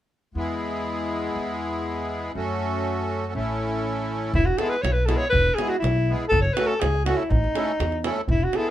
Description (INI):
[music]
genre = balkan folk, Balkan wedding band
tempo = 121 BPM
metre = 2/4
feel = straight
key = E major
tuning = A4 = 440 Hz
[part]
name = accordion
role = accompaniment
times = 0.3-8.7 s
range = G#3 to A4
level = -27 LUFS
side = equal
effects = light tremolo tuning
[part]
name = upright bass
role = bass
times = 0.4-8.4 s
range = E1 to F#2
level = -26 LUFS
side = equal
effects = none
[part]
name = warm alto saxophone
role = melody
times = 4.3-8.7 s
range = D#4 to C#5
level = -23 LUFS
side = left 1 dB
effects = none
[part]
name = davul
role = percussion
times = 4.3-8.6 s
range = none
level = -28 LUFS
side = right 2 dB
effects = none
[sound]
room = light reverb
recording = none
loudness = -22 LUFS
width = side -12 dB against mid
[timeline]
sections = 0.4-4.3 A section; 4.3-8.7 B section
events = none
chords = 0.4 E; 2.4 F#m; 3.4 A; 4.3 E; 6.3 F#m; 7.3 A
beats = | 0.35 0.85 | 1.35 1.85 | 2.35 2.85 | 3.35 3.85 | 4.34 4.84 | 5.33 5.83 | 6.32 6.81 | 7.31 7.80 | 8.29